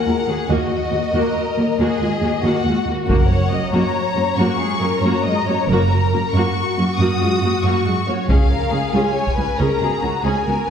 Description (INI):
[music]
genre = cinematic, epic orchestral film score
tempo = 92 BPM (dotted quarters)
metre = 12/8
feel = straight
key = unclear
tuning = A4 = 438 Hz
[part]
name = warm symphonic violin section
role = melody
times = 0.0-10.7 s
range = C#5 to D#6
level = -24 LUFS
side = left 4 dB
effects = none
[part]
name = warm symphonic violin section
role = second line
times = 0.0-10.7 s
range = E#4 to D#5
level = -23 LUFS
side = left 4 dB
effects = none
[part]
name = warm studio viola section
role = accompaniment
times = 0.0-10.6 s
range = G#3 to G#4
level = -23 LUFS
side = right 1 dB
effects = none
[part]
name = warm symphonic cello section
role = bass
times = 0.1-10.5 s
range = C#2 to F#2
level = -21 LUFS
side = right 1 dB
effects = none
[part]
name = rich symphonic double bass section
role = bass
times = 0.5-8.5 s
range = F#1 to D#2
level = -22 LUFS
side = right 2 dB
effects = none
[part]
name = taiko ensemble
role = drums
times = 3.1-3.9, 8.3-9.5 s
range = none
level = -19 LUFS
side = equal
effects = none
[sound]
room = wet scoring stage reverb, RT60 1.7 s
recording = heard from further back in the room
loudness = -16 LUFS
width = side -8 dB against mid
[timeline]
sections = 0.0-10.7 A section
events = none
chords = 0.0 D#m; 3.1 F#; 8.3 C#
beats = | 0.51 1.16 1.80 2.45 | 3.10 3.74 4.39 5.04 | 5.69 6.34 6.99 7.64 | 8.29 8.94 9.60 10.25